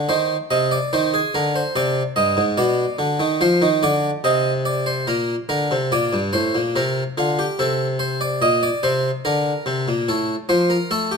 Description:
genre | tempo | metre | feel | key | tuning
classical, baroque-style two-part invention for harpsichord | 72 BPM | 3/4 | straight | C minor, Bb major from 5.1 s | A4 = 440 Hz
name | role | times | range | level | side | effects
harpsichord | solo | 0.0-11.2 s | G2 to Eb5 | -18 LUFS | equal | none
room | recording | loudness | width
light reverb | close, detailed microphones | -18 LUFS | side -5 dB against mid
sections
0.1-5.1 A section; 5.1-11.2 B section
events
none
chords
0.1 Cm; 1.8 Abmaj7#11; 2.6 Bdim; 4.2 Cm; 5.1 Bb; 6.8 C5; 7.6 Bbmaj9; 9.2 Bb/D; 10.1 F/A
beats
| 0.09 0.92 1.75 | 2.58 3.41 4.25 | 5.08 5.92 6.75 | 7.59 8.42 9.25 | 10.07 10.90

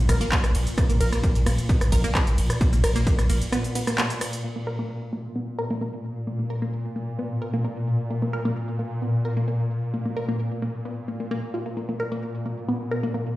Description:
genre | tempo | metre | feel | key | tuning
driving peak-time techno | 131 BPM | 4/4 | straight | unclear | A4 = 439 Hz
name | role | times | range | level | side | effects
saturated sub bass | bass | 0.0-3.4 s | Bb1 | -24 LUFS | equal | overdrive, sidechain pumping, low-pass filter
swarming drone | drone | 0.0-13.4 s | Bb2 | -28 LUFS | left 1 dB | built-in reverb, sidechain pumping
wide unison pluck | riff | 0.1-13.2 s | Bb3 to Bb4 | -29 LUFS | equal | sidechain pumping, digital delay
electronic kick drum | drums | 0.1-3.2 s | none | -22 LUFS | equal | none
techno drum kit | drums | 0.1-4.4 s | handclaps, hi-hat, ride cymbal, rim click | -29 LUFS | equal | low-pass filter on hats, low-pass filter on cymbals, low-pass filter on snare, low-pass filter on room
room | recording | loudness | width
light reverb | played on a big sound system in a bare room, large studio reverb | -23 LUFS | side -16 dB against mid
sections
0.0-4.4 A section; 4.4-13.4 B section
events
drop 0.0-4.4; break 3.5-4.4; filter sweep on synth arpeggio sound 4.4-13.4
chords
0.0 Bb5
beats
0.32 | 0.78 1.23 1.69 2.15 | 2.61 3.07 3.52 3.98 | 4.44 4.90 5.36 5.82 | 6.27 6.73 7.19 7.65 | 8.11 8.56 9.02 9.48 | 9.94 10.39 10.85 11.31 | 11.77 12.23 12.69 13.14

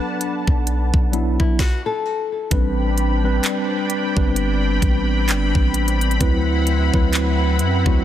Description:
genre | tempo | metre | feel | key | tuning
contemporary R&B | 65 BPM | 4/4 | swing 58% on 16ths | A dorian | A4 = 437 Hz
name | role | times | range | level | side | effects
mellow tine electric piano | accompaniment | 0.0-8.0 s | F#3 to B4 | -23 LUFS | equal | medium stereo tremolo
lush unison pad | sustained chords | 0.0-8.0 s | C4 to B5 | -25 LUFS | left 1 dB | chorus, phaser, sidechain pumping
trap drum kit | drums | 0.2-8.0 s | handclaps, hi-hat, kick drum, snare drum | -20 LUFS | equal | soft clipping on snare
long sustained 808-style bass | bass | 0.5-8.0 s | G1 to F#2 | -20 LUFS | equal | none
nylon-string guitar | arpeggios | 1.4-2.5 s | E4 to A4 | -25 LUFS | left 6 dB | digital delay
room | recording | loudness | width
little or no reverb | dense, heavily limited modern master | -17 LUFS | side -11 dB against mid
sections
0.0-2.5 A section; 2.5-8.0 B section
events
stop 1.6-2.5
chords
0.0 Bm7; 2.5 Am11; 6.2 D13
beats
0.67 1.59 | 2.52 3.44 4.36 5.28 | 6.21 7.13

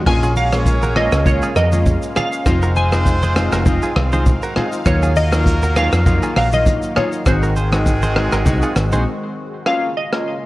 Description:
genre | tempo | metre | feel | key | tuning
afrobeats | 100 BPM | 4/4 | swing 55% on 16ths | Bb minor | A4 = 440 Hz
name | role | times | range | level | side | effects
lush unison pad | sustained chords | 0.0-10.5 s | Db3 to F5 | -28 LUFS | equal | chorus, phaser
glassy wavetable pluck | melody | 0.1-10.5 s | C5 to Ab5 | -21 LUFS | equal | chorus, ping-pong delay
clear horn section | second line | 0.1-9.3 s | Eb3 to Db5 | -25 LUFS | right 1 dB | none
warm analog keys | accompaniment | 0.1-10.3 s | Gb3 to Gb4 | -23 LUFS | left 1 dB | chorus
hollow-body short-scale fingered electric bass | bass | 0.1-9.0 s | F1 to F2 | -18 LUFS | equal | none
swinging big-band drum kit | drums | 0.1-10.3 s | hi-hat, kick drum, rim click, shaker, splash cymbal | -19 LUFS | equal | none
congas | percussion | 0.1-9.1 s | none | -26 LUFS | right 1 dB | none
direct-recorded clean electric guitar | riff | 0.2-9.0 s | F4 to C5 | -27 LUFS | right 3 dB | ping-pong delay
room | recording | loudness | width
small room reverb | worn, warbling old tape, cassette tape, warbly pitch drift | -14 LUFS | side -18 dB against mid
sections
0.0-9.7 A section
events
break 9.1-9.7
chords
0.1 Bbm7; 2.5 Fm7; 4.9 Ebmadd9; 7.3 Ab7; 9.7 Bbm7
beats
| 0.06 0.66 1.26 1.86 | 2.46 3.06 3.66 4.26 | 4.86 5.46 6.06 6.66 | 7.26 7.86 8.46 9.06 | 9.66 10.26

